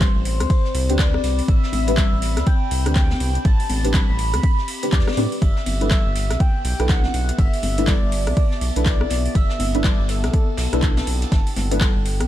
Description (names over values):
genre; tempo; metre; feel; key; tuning
deep house; 122 BPM; 4/4; swing 61% on 16ths; unclear; A4 = 438 Hz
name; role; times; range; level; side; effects
mellow horn-like synth lead; melody; 0.0-12.3 s; A4 to B5; -28 LUFS; equal; lush chorus, tape echo
deep mellow chord stab; stabs; 0.0-11.9 s; C4 to B4; -27 LUFS; equal; chorus, phaser, sidechain pumping
round analog bass; bass; 0.0-12.3 s; G1 to A2; -22 LUFS; equal; sidechain pumping
deep house drum kit; drums; 0.0-12.3 s; handclaps, hi-hat, rim click; -28 LUFS; equal; overdrive
electronic kick drum; drums; 0.0-11.9 s; none; -18 LUFS; equal; overdrive
vintage brush drum kit; drums; 0.0-12.2 s; hi-hat, ride cymbal, snare drum; -36 LUFS; right 2 dB; sidechain pumping on cymbals, high-pass filter on cymbals, sidechain pumping on hats, high-pass filter on hats, high-pass filter on snare, high-pass filter on room
bongos and congas; percussion; 0.0-12.3 s; none; -31 LUFS; left 3 dB; none
warbly tape-like pad; texture; 0.0-12.3 s; B3 to B5; -32 LUFS; left 4 dB; chorus, built-in reverb, sidechain pumping
room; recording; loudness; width
small room ambience; dark, warm production; -17 LUFS; side -13 dB against mid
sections
0.0-12.3 A section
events
none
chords
0.0 Am11; 5.4 G69